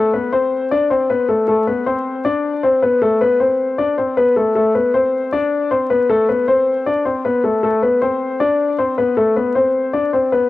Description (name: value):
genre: hip hop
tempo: 156 BPM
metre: 4/4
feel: half-time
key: A minor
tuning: A4 = 440 Hz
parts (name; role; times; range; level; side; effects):
- dark baby grand piano; solo; 0.0-10.5 s; A3 to D5; -14 LUFS; left 2 dB; tape echo
room: moderate booth ambience, RT60 0.2 s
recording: home recording on cassette, vinyl crackle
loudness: -14 LUFS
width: side -16 dB against mid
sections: 0.0-10.5 A section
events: none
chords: 0.0 Am